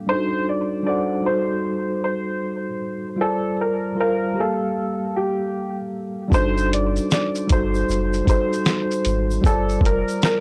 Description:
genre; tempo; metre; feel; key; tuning
lo-fi hip hop; 77 BPM; 4/4; swing 63% on 16ths; unclear; A4 = 436 Hz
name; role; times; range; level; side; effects
mellow tine electric piano; accompaniment; 0.0-10.4 s; G3 to F#5; -26 LUFS; equal; low-pass filter
warm upright piano; melody; 0.1-10.4 s; G4 to D5; -27 LUFS; equal; low-pass filter, analog delay
soft dub sub bass; bass; 6.3-10.0 s; F1 to Ab1; -26 LUFS; equal; tube saturation
lo-fi sampler-style drum kit; drums; 6.3-10.4 s; hi-hat, kick drum, shaker, snare drum; -22 LUFS; equal; none
tube shaker; percussion; 6.3-10.4 s; none; -44 LUFS; equal; none
room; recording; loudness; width
little or no reverb; dry, gritty hardware recording, cassette tape; -22 LUFS; mono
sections
0.0-6.3 A section; 6.3-10.4 B section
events
none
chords
0.1 D7b9/G; 1.3 Am7b5/G; 3.2 Bb/G; 4.4 Gm9; 6.3 D7b9/G; 7.5 F#dim7; 9.4 Bbmaj13

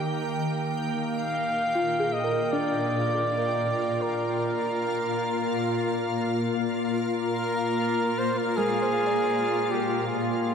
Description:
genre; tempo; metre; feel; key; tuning
ambient; 79 BPM; 4/4; straight; unclear; A4 = 440 Hz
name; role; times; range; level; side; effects
warm flugelhorn; melody; 0.0-10.5 s; F4 to F5; -28 LUFS; equal; diffuse ambient delay
shimmering ambient pad; sustained chords; 0.0-10.5 s; Bb2 to G5; -27 LUFS; left 1 dB; chorus, built-in reverb
soft round pluck; arpeggios; 1.8-10.5 s; Ab3 to D5; -32 LUFS; equal; chorus, diffuse ambient delay
room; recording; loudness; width
wet cathedral reverb, RT60 6.7 s; in a vast, echoing space; -24 LUFS; side -6 dB against mid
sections
0.0-10.5 A section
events
none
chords
0.0 Eb; 1.0 Bb

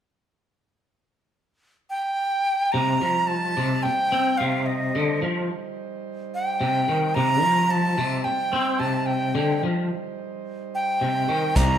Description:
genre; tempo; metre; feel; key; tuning
psychedelic rock; 109 BPM; 4/4; straight; C dorian; A4 = 441 Hz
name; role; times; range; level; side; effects
breathy bright jazz flute; melody; 1.9-11.8 s; Eb5 to Bb5; -23 LUFS; right 1 dB; none
overdriven combo organ; sustained chords; 2.7-11.8 s; G3 to C5; -35 LUFS; right 6 dB; none
twangy electric guitar; riff; 2.7-11.8 s; C3 to C4; -24 LUFS; left 1 dB; rotary speaker
fuzz picked electric bass; bass; 11.6-11.8 s; C2; -21 LUFS; equal; overdrive
vintage drum kit; drums; 11.6-11.7 s; hi-hat, kick drum; -21 LUFS; equal; none
room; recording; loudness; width
wet large studio reverb, RT60 1.3 s; band playing live in one room; -21 LUFS; side -9 dB against mid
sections
0.5-2.7 A section; 2.7-11.8 B section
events
none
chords
0.5 N.C.; 2.7 Cm

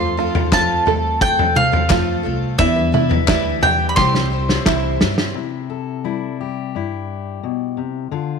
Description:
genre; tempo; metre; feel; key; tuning
indie folk with a building arrangement; 87 BPM; 4/4; straight; C major; A4 = 440 Hz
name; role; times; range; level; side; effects
bowl-back mandolin; melody; 0.0-5.0 s; E5 to C6; -19 LUFS; right 1 dB; none
dark upright piano; accompaniment; 0.0-5.4 s; F1 to C5; -31 LUFS; left 12 dB; none
picked twelve-string acoustic guitar; accompaniment; 0.0-5.4 s; C3 to C5; -25 LUFS; left 13 dB; none
open-back banjo; arpeggios; 0.0-5.3 s; E4 to A4; -23 LUFS; right 12 dB; none
upright bass; bass; 0.0-5.3 s; C2 to G2; -23 LUFS; equal; none
loose indie drum kit; drums; 0.3-5.3 s; kick drum, snare drum, toms; -19 LUFS; equal; none
group handclap; percussion; 0.5-4.8 s; none; -26 LUFS; left 15 dB; none
fingerpicked steel-string acoustic guitar; accompaniment; 5.3-8.4 s; G2 to A4; -23 LUFS; left 10 dB; none
room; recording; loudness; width
light reverb, small room reverb; 1960s-style stereo with parts hard left and right; -16 LUFS; side -5 dB against mid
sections
0.0-5.4 A section; 5.4-8.4 B section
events
drum fill 4.0-5.4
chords
0.0 F; 2.6 Em7; 4.0 C

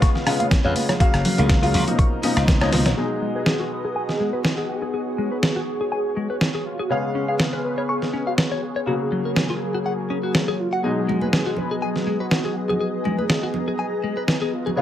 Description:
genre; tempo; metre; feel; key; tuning
nu-disco, nu disco; 122 BPM; 4/4; swing 54% on 16ths; G# dorian; A4 = 441 Hz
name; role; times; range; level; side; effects
clear concert grand piano; accompaniment; 0.0-14.8 s; B2 to E#5; -27 LUFS; left 2 dB; sidechain pumping, dub echo
lush unison pad; sustained chords; 0.0-14.8 s; F#3 to A#5; -28 LUFS; equal; chorus, sidechain pumping
direct-recorded clean electric guitar; riff; 0.0-14.8 s; F#3 to C#6; -28 LUFS; left 3 dB; wide subtle chorus, low-pass filter
dusty soul sampler-style drum kit; drums; 0.0-14.4 s; hi-hat, rim click, snare drum; -23 LUFS; equal; none
electronic kick drum; drums; 0.0-2.6 s; none; -18 LUFS; equal; none
congas; percussion; 0.4-3.0, 11.1-14.8 s; none; -30 LUFS; right 3 dB; none
glassy slap bass; bass; 0.6-2.9 s; F#1 to E#2; -21 LUFS; equal; sidechain pumping
wide unison lead; melody; 2.7-14.8 s; E#4 to B4; -28 LUFS; equal; ensemble chorus, cassette tape, dub echo
room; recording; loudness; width
light reverb, digital ambience; none; -19 LUFS; side -11 dB against mid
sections
0.0-3.0 A section; 3.0-14.8 B section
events
drum fill 2.7; filter sweep on clean electric guitar 3.0-14.8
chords
0.0 C#7; 1.0 F#maj7; 2.0 C#13; 3.0 G#m7; 6.9 C#7; 8.9 F#; 10.8 G#m7

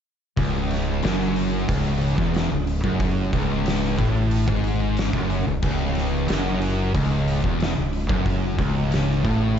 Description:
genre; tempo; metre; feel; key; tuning
stoner and doom metal; 91 BPM; 4/4; straight; C# minor; A4 = 440 Hz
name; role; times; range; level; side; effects
distorted electric guitar; riff; 0.4-9.6 s; C#2 to A2; -28 LUFS; equal; overdrive
thick fuzz guitar; riff; 0.4-9.6 s; C#2 to A2; -26 LUFS; left 8 dB; distortion
thick fuzz guitar; riff; 0.4-9.6 s; C#2 to A2; -26 LUFS; right 7 dB; distortion
growling fingered electric bass; bass; 0.4-9.6 s; C#1 to A1; -27 LUFS; equal; overdrive
oversized low-tuned drum kit; drums; 0.4-9.4 s; crash cymbal, hi-hat, kick drum, snare drum; -26 LUFS; equal; none
room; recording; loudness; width
light reverb; dark, warm production, nothing above 7.7 kHz; -20 LUFS; side -8 dB against mid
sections
0.4-9.6 A section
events
none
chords
0.4 C#m

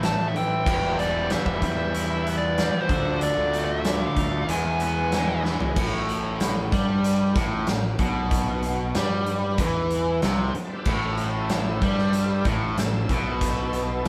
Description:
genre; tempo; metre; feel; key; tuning
classic rock; 94 BPM; 4/4; straight; A minor; A4 = 440 Hz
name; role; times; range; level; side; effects
dark smooth lead guitar; melody; 0.0-5.4 s; C5 to A5; -30 LUFS; equal; overdrive
bright tonewheel organ; sustained chords; 0.0-5.8, 10.6-14.1 s; A3 to E5; -41 LUFS; equal; none
biting overdriven guitar; riff; 0.0-14.1 s; E2 to E4; -32 LUFS; equal; none
crunchy overdriven guitar; riff; 0.0-14.1 s; A2 to F4; -31 LUFS; equal; none
fuzz fingered electric bass; bass; 0.0-14.1 s; E1 to G2; -30 LUFS; equal; overdrive
huge arena drum kit; drums; 0.0-14.1 s; crash cymbal, hi-hat, kick drum, snare drum, toms; -30 LUFS; equal; none
room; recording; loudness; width
moderate studio reverb, RT60 0.8 s; band playing live in one room; -24 LUFS; mono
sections
0.0-5.8 A section; 5.8-14.1 B section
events
drum fill 5.5-5.8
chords
0.0 Am; 0.7 Em; 2.9 Dm; 4.5 E; 5.8 Am

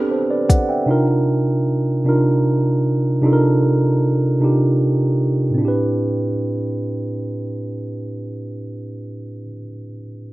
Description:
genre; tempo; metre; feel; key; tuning
slow six-eight R&B; 51 BPM (dotted quarters); 6/8; straight; unclear; A4 = 440 Hz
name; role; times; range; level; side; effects
mellow tine electric piano; accompaniment; 0.0-10.3 s; A2 to G5; -17 LUFS; right 1 dB; none
smooth R&B drum kit; drums; 0.5-0.7 s; hi-hat, kick drum; -16 LUFS; left 1 dB; overdrive
room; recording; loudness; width
light reverb; dark, warm production; -16 LUFS; side -18 dB against mid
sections
0.0-5.6 A section; 5.6-7.9 B section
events
none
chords
0.0 Am11; 0.9 Cm11; 5.6 Am11

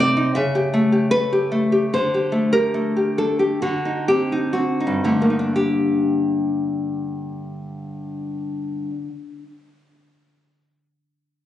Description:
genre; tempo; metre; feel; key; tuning
romantic piece for solo classical guitar; 57-79 BPM; 4/4; rubato; G minor; A4 = 441 Hz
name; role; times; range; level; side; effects
nylon-string guitar; solo; 0.0-9.6 s; G2 to E5; -18 LUFS; left 1 dB; none
room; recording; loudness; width
moderate recital hall reverb, RT60 1.6 s; recorded on a phone in the room, club reverb, compression; -18 LUFS; side -12 dB against mid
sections
0.0-5.6 A section; 5.6-9.5 B section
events
slowing down 0.0-5.6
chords
0.3 A7/C#; 1.9 Dsus4; 3.6 D7b9; 5.6 Gm

